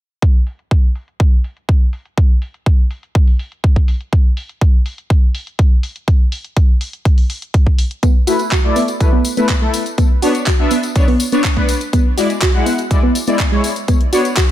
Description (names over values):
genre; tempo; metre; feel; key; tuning
progressive house; 123 BPM; 4/4; straight; B dorian; A4 = 440 Hz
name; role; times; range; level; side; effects
deep house drum kit; drums; 0.2-14.5 s; handclaps, hi-hat; -24 LUFS; equal; low-pass filter on hats, low-pass filter on snare
electronic kick drum; drums; 0.2-14.5 s; none; -12 LUFS; equal; overdrive
soft round pluck; arpeggios; 8.0-14.4 s; G#3 to F#4; -19 LUFS; right 1 dB; analog chorus, sidechain pumping, ping-pong delay
tambourine; percussion; 8.0-14.5 s; none; -28 LUFS; left 4 dB; none
soft supersaw; stabs; 8.3-14.5 s; G#3 to F#5; -18 LUFS; left 2 dB; vintage 12-bit sampler grit, sidechain pumping, ping-pong delay
room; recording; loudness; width
digital ambience; none; -13 LUFS; side -13 dB against mid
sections
0.2-14.5 A section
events
none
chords
0.2 N.C.; 8.0 Asus2; 10.0 Bmadd9; 11.9 E7; 13.9 Bmadd9